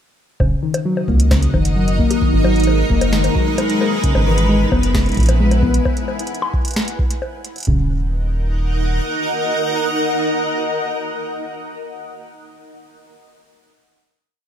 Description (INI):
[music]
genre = IDM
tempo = 132 BPM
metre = 4/4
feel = straight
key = Eb phrygian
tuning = A4 = 440 Hz
[part]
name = granular cloud pad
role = sustained chords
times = 1.3-12.0 s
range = Ab3 to Gb5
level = -21 LUFS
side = right 1 dB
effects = built-in reverb, wide subtle chorus
[part]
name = harp-like synth pluck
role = arpeggios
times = 0.4-7.9 s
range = Db3 to B3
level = -20 LUFS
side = left 4 dB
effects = chorus, ping-pong delay
[part]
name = rubbery square bass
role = bass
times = 0.4-9.0 s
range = Eb1 to Db2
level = -17 LUFS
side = equal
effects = none
[part]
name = booming analog drum machine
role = drums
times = 0.4-7.7 s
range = bongos, hi-hat, snare drum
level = -24 LUFS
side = left 1 dB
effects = overdrive, tape echo
[part]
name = electronic kick drum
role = drums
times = 0.4-7.8 s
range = none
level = -20 LUFS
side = equal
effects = overdrive
[sound]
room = light reverb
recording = none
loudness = -15 LUFS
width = side -9 dB against mid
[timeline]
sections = 0.4-7.7 groove; 7.7-11.3 final chord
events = none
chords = 0.4 Ebm7; 2.2 Abm9; 4.0 E; 5.9 N.C.; 7.7 Ebm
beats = | 0.40 0.85 1.31 1.76 | 2.22 2.67 3.13 3.58 | 4.04 4.49 4.95 5.40 | 5.85 6.31 6.76 7.22 | 7.67 8.13 8.58 9.04 | 9.49 9.95 10.40 10.85